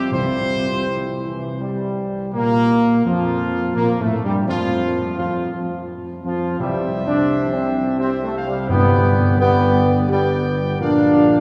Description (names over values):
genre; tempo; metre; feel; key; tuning
classical; 85 BPM; 3/4; straight; C major; A4 = 441 Hz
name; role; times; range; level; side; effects
bright trumpet section; melody; 0.0-11.4 s; G3 to G5; -28 LUFS; equal; none
mellow French horn section; sustained chords; 0.0-11.4 s; F3 to C5; -28 LUFS; equal; none
warm trombone section; sustained chords; 0.0-11.4 s; C3 to D4; -22 LUFS; equal; none
dark tuba; bass; 0.0-11.4 s; G1 to Bb2; -26 LUFS; equal; none
timpani; percussion; 0.1-1.2, 6.6-9.7 s; G2 to C3; -26 LUFS; equal; none
room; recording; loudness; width
wet cathedral reverb, RT60 4.6 s; recorded in a church or concert hall; -19 LUFS; mono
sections
0.0-2.3 A section; 2.3-11.4 B section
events
none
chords
0.1 C; 2.3 Bb5; 4.5 N.C.; 6.6 C; 8.7 G; 10.8 Bb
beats
| 0.12 0.86 1.59 | 2.34 3.05 3.76 | 4.47 5.18 5.89 | 6.60 7.30 8.00 | 8.70 9.40 10.10 | 10.80